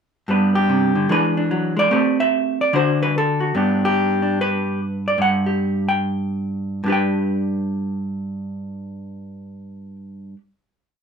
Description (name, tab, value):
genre	solo jazz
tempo	146 BPM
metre	4/4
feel	swing 64% on 8ths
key	G major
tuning	A4 = 440 Hz
part	vintage hollow-body jazz guitar	solo	0.3-10.4 s	G2 to G5	-18 LUFS	equal	none
room	light reverb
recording	minimal, uncompressed stereo recording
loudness	-18 LUFS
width	side -6 dB against mid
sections	0.3-6.8 A section; 6.8-10.1 final chord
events	none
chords	0.3 G; 1.1 E7; 1.9 Am9; 2.7 D; 3.5 G